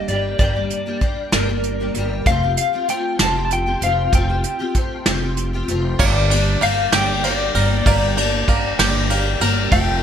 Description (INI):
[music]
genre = indie folk with a building arrangement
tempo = 64 BPM (dotted quarters)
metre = 6/8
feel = straight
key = G minor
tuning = A4 = 440 Hz
[part]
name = electric guitar through a small old amp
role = melody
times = 0.0-10.0 s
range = Bb4 to A5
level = -22 LUFS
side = left 2 dB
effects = tremolo
[part]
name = picked steel-string acoustic guitar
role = accompaniment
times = 0.0-10.0 s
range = G2 to G4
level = -25 LUFS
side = left 2 dB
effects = ensemble chorus
[part]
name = upright bass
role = bass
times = 0.0-10.0 s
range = F1 to G1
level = -22 LUFS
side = equal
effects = none
[part]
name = soft brush drum kit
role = drums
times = 0.1-9.9 s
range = crash cymbal, hi-hat, kick drum, ride cymbal, snare drum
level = -20 LUFS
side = equal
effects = none
[part]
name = bluegrass banjo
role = arpeggios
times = 6.0-10.0 s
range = A3 to Bb4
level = -24 LUFS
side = right 9 dB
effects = none
[sound]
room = light reverb, studio ambience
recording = bright 1980s-style digital production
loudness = -16 LUFS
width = side -8 dB against mid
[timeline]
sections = 0.0-6.0 A section; 6.0-10.0 B section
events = none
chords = 0.0 Gm; 2.3 Fadd9; 6.0 Gm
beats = | 0.39 1.33 | 2.27 3.20 | 4.13 5.07 | 6.00 6.93 | 7.86 8.79 | 9.72